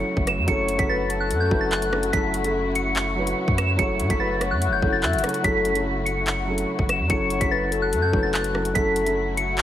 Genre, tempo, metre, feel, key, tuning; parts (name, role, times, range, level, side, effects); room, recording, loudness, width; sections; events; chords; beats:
hip hop, drill; 145 BPM; 4/4; half-time; F# minor; A4 = 440 Hz
soft synth bell; melody; 0.0-9.6 s; F#6 to E7; -26 LUFS; equal; chorus, phaser, low-pass filter, ping-pong delay
felt-muted upright piano; accompaniment; 0.0-9.6 s; F#3 to B4; -28 LUFS; right 2 dB; low-pass filter
muted studio string section; sustained chords; 0.0-9.6 s; C#3 to F#4; -30 LUFS; left 3 dB
long sustained 808-style bass; bass; 0.0-9.6 s; F#1 to A2; -28 LUFS; equal
downlifter; sound effects; 0.0-2.1 s; -49 LUFS; right 1 dB
drill drum kit; drums; 0.2-9.6 s; handclaps, hi-hat, kick drum, rim click; -26 LUFS; equal
breathy flute-like synth lead; second line; 0.5-9.1 s; A4 to F#5; -28 LUFS; left 4 dB; chorus, ping-pong delay
light reverb, digital ambience; vinyl crackle; -20 LUFS; side -11 dB against mid
0.0-9.6 A section
0.0 F#m7
0.06 | 0.48 0.89 1.31 1.72 | 2.13 2.55 2.96 3.38 | 3.79 4.20 4.62 5.03 | 5.44 5.86 6.27 6.68 | 7.10 7.51 7.93 8.34 | 8.75 9.17 9.58